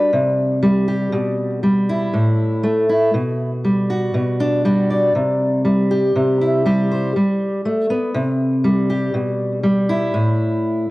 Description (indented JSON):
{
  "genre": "folk",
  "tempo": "120 BPM",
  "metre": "4/4",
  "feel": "straight",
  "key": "unclear",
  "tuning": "A4 = 441 Hz",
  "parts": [
    { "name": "fingerpicked steel-string acoustic guitar", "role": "solo", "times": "0.0-10.9 s", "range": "A2 to D5", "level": "-16 LUFS", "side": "equal", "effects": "cassette tape" }
  ],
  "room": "moderate spring reverb, RT60 1.6 s, small room ambience",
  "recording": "home recording on cassette",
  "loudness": "-16 LUFS",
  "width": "side -19 dB against mid",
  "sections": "0.0-10.9 A section",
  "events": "none",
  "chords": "0.1 C5; 1.1 Em/B; 2.1 A5; 3.1 Gmaj7/B; 5.2 C; 7.2 G; 8.2 C5; 9.2 Em/B; 10.2 A5"
}